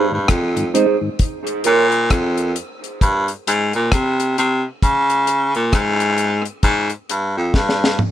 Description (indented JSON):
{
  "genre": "dub reggae",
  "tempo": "66 BPM",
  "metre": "4/4",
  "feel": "swing 60% on 16ths",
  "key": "Bb dorian",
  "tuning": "A4 = 440 Hz",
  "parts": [
    { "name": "mellow electric guitar", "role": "accompaniment", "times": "0.0-1.9 s", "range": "Eb4 to Db5", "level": "-21 LUFS", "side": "right 6 dB", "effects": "low-pass filter, dub echo" },
    { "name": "raspy baritone saxophone", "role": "bass", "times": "0.0-8.0 s", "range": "F2 to Db3", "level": "-16 LUFS", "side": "equal", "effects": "none" },
    { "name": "mellow tonewheel organ", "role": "accompaniment", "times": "0.1-1.1 s", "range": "Ab2 to Eb4", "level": "-25 LUFS", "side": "left 1 dB", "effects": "slow rotary speaker, low-pass filter" },
    { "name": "deep reggae drum kit", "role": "drums", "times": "0.3-8.1 s", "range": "hi-hat, kick drum, rim click, snare drum, toms", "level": "-19 LUFS", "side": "left 1 dB", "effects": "none" }
  ],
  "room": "little or no reverb",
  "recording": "none",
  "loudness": "-15 LUFS",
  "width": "side -11 dB against mid",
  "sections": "0.0-8.1 A section",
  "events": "drum fill 7.5-8.1",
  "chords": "0.0 Ab; 1.2 Bb5; 4.8 Db5; 6.6 Fmadd9 (rootless)"
}